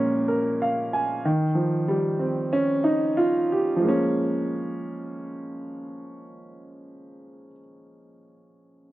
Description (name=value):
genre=hip hop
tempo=93 BPM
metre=4/4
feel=swing 59% on 16ths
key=Bb dorian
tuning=A4 = 439 Hz
part: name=dark upright piano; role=accompaniment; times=0.0-8.9 s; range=Bb2 to Ab5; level=-23 LUFS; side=right 1 dB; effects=cassette tape, high-pass filter, low-pass filter
room=moderate small room reverb, RT60 0.5 s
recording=none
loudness=-22 LUFS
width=side -16 dB against mid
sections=0.0-3.8 A section; 3.8-6.4 B section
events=none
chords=0.0 Bbm7; 1.2 Eb13; 3.8 Bbm7